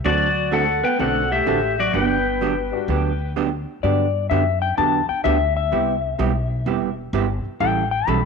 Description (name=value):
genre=country, western swing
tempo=127 BPM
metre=4/4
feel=swing 66% on 8ths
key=G major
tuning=A4 = 440 Hz
part: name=vintage hollow-body jazz guitar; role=accompaniment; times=0.0-8.2 s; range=C3 to A4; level=-24 LUFS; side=right 10 dB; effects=none
part: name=upright bass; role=bass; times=0.0-8.3 s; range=E1 to G2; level=-25 LUFS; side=left 1 dB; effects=none
part: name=pedal steel guitar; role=melody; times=0.1-3.3 s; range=F#4 to G5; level=-20 LUFS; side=left 4 dB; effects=slapback echo
part: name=hollow-body jazz guitar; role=second line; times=0.1-3.3 s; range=F#3 to B3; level=-28 LUFS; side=right 10 dB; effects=none
part: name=warm upright piano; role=accompaniment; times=1.0-2.9 s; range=G3 to F#4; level=-30 LUFS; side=left 12 dB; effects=none
part: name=clean lap steel guitar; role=second line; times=3.8-8.3 s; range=D5 to B5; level=-21 LUFS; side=left 11 dB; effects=none
room=moderate echo chamber reverb, RT60 1.6 s, small room ambience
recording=1960s-style stereo with parts hard left and right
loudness=-18 LUFS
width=side -5 dB against mid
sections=0.0-3.8 A section; 3.8-8.3 B section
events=electric slide guitar solo 3.8-8.3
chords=0.1 D7; 1.9 Gmaj7; 5.7 Cmaj7; 7.6 A7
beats=| 0.05 0.52 1.00 1.47 | 1.94 2.41 2.89 3.36 | 3.83 4.30 4.78 5.25 | 5.72 6.19 6.66 7.13 | 7.61 8.08